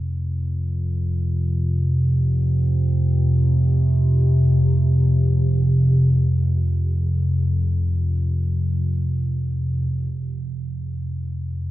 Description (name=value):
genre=ambient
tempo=free time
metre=none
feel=none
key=unclear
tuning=A4 = 440 Hz
part: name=deep rumbling drone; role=solo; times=0.0-11.7 s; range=F2 to C3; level=-18 LUFS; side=equal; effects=built-in reverb
room=wet huge ambient reverb, RT60 7.4 s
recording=worn, warbling old tape, cassette tape, warbly pitch drift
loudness=-18 LUFS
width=side -15 dB against mid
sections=0.0-9.9 A section; 9.9-11.7 B section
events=none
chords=0.0 F5